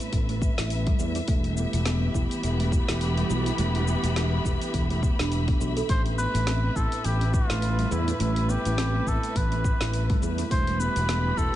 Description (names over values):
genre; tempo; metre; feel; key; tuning
organic downtempo; 104 BPM; 4/4; swing 57% on 16ths; unclear; A4 = 441 Hz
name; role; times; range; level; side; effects
dark symphonic string section; sustained chords; 0.0-11.6 s; A2 to B5; -32 LUFS; equal; sidechain pumping
kalimba; arpeggios; 0.0-11.6 s; E3 to A4; -32 LUFS; right 2 dB; digital delay
deep house drum kit; drums; 0.0-11.5 s; hi-hat, shaker, snare drum; -35 LUFS; left 1 dB; studio reverb
sustaining fretless electric bass; bass; 0.1-11.5 s; E1 to E2; -26 LUFS; equal; ensemble chorus, sidechain pumping
electronic kick drum; drums; 0.1-11.5 s; none; -26 LUFS; equal; studio reverb
trumpet with cup mute; melody; 5.9-11.6 s; E4 to C5; -30 LUFS; equal; ping-pong delay
room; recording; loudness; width
little or no reverb; nothing above 10.4 kHz; -23 LUFS; side -13 dB against mid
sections
0.0-11.6 A section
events
none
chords
0.0 Asus2; 1.3 Em; 5.9 Asus2; 10.5 Em